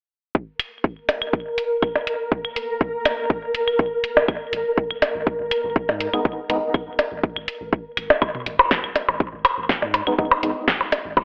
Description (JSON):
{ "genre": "minimal techno", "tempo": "122 BPM", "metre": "4/4", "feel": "straight", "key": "G# minor", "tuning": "A4 = 440 Hz", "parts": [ { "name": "electronic kick drum", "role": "drums", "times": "0.3-11.2 s", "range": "none", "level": "-24 LUFS", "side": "equal", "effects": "none" }, { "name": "flickering grainy texture", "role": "texture", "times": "1.1-8.2 s", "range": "A#4", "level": "-28 LUFS", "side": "equal", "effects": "built-in reverb, lush chorus, sidechain pumping" }, { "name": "house drum kit", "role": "drums", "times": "0.6-11.0 s", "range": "hi-hat, snare drum", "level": "-26 LUFS", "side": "equal", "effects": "none" }, { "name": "electronic claves, percussion blips and toms", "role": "percussion", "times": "0.6-11.2 s", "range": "none", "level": "-23 LUFS", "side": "equal", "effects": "analog delay" }, { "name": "punchy sub bass", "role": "bass", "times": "4.5-11.1 s", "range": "D#1 to G#2", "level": "-39 LUFS", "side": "equal", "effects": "tube saturation, sidechain pumping" }, { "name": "percussive organ stab", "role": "stabs", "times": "6.1-6.6, 10.1-10.5 s", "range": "G#3 to D#4", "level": "-27 LUFS", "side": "equal", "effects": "ensemble chorus, analog delay" } ], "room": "wet plate reverb, RT60 1.1 s", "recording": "dreamy mix soaked in reverb, telephone sound", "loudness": "-22 LUFS", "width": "mono", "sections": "0.3-8.2 A section; 8.2-11.2 B section", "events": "none", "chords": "0.3 N.C.; 8.2 G#m", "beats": "| 0.35 0.84 1.33 1.82 | 2.32 2.81 3.30 3.79 | 4.28 4.78 5.27 5.76 | 6.25 6.74 7.24 7.73 | 8.22 8.71 9.20 9.69 | 10.19 10.68 11.17" }